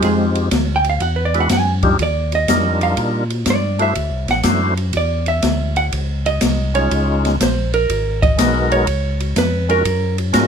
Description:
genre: soul jazz organ trio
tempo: 122 BPM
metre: 4/4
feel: swing 68% on 8ths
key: unclear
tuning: A4 = 440 Hz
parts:
  - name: percussive tonewheel organ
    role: melody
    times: 0.0-10.5 s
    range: G3 to C5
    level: -18 LUFS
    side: left 1 dB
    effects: slow rotary speaker, overdrive, chorus vibrato
  - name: vintage hollow-body jazz guitar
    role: accompaniment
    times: 0.0-10.2 s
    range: Ab3 to G#5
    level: -20 LUFS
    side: right 3 dB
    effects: none
  - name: tonewheel organ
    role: bass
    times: 0.0-10.5 s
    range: Ab1 to Bb2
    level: -20 LUFS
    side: left 1 dB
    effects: slow rotary speaker
  - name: open jazz drum kit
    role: drums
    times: 0.0-10.5 s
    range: hi-hat, kick drum, ride cymbal, snare drum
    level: -21 LUFS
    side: left 1 dB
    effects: none
room: light reverb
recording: close, detailed microphones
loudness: -15 LUFS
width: side -7 dB against mid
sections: 0.0-10.5 A section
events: hollow-body jazz guitar solo 0.0-10.5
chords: 0.0 Fm7; 1.0 E9; 2.0 Ebmaj9; 4.0 D9; 5.9 Dbmaj9; 7.9 Abm9; 8.9 Db; 9.8 Gbmaj9

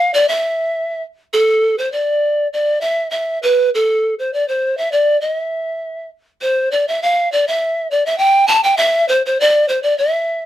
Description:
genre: andean folk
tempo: 100 BPM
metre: 2/4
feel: straight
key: unclear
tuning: A4 = 440 Hz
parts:
  - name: breathy mellow pan flute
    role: solo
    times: 0.0-10.5 s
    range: A4 to A5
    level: -14 LUFS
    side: equal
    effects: none
room: light reverb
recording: minimal, uncompressed stereo recording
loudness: -14 LUFS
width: side -12 dB against mid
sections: 0.0-1.6 A section; 1.6-6.4 B section; 6.4-10.5 C section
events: none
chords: none

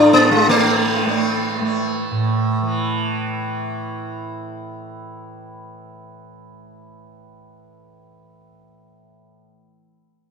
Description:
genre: indian classical, Hindustani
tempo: 158 BPM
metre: 3/4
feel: straight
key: unclear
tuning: A4 = 440 Hz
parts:
  - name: sitar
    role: melody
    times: 0.0-1.6 s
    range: G#3 to A4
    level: -15 LUFS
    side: left 1 dB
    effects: ping-pong delay
  - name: tanpura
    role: drone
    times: 0.0-9.8 s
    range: A2 to A3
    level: -23 LUFS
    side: right 3 dB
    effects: none
room: wet lush hall reverb, RT60 2.0 s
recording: dreamy mix soaked in reverb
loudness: -17 LUFS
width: side -6 dB against mid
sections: 0.5-2.8 A section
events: none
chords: none

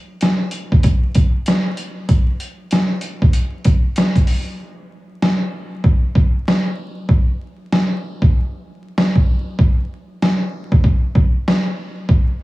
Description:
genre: hip hop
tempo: 96 BPM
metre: 4/4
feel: swing 62% on 16ths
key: none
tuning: none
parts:
  - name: trip hop sampler-style drum kit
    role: drums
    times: 0.2-12.3 s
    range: hi-hat, kick drum, snare drum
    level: -14 LUFS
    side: equal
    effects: none
room: light reverb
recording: heavily compressed radio sound, vinyl crackle, small room ambience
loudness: -15 LUFS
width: side -19 dB against mid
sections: 0.0-12.4 A section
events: hi-hats muted 4.6-12.4; break 4.6-5.8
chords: none

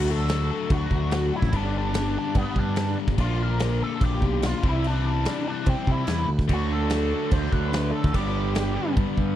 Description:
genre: classic rock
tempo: 145 BPM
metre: 4/4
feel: straight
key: G major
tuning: A4 = 440 Hz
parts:
  - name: bluesy overdriven lead guitar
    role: melody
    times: 0.0-8.9 s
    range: B3 to C5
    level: -30 LUFS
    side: right 1 dB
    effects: wah, distortion, slapback echo
  - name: distorted electric guitar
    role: riff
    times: 0.0-9.4 s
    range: G2 to G4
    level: -30 LUFS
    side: left 12 dB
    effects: overdrive
  - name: growling picked electric bass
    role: bass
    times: 0.0-9.4 s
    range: G1 to C3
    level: -25 LUFS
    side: right 1 dB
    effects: overdrive
  - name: big rock drum kit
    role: drums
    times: 0.3-9.3 s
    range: crash cymbal, kick drum, snare drum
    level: -27 LUFS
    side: equal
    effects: none
  - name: raw garage guitar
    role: riff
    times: 6.5-9.4 s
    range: G2 to D4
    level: -30 LUFS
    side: right 16 dB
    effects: overdrive
room: small room ambience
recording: dry, close 1970s-style studio recording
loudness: -22 LUFS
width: side -12 dB against mid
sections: 0.0-9.4 A section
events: none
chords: 0.0 D; 1.5 G; 3.2 Bb; 4.6 C; 6.5 D; 8.1 G

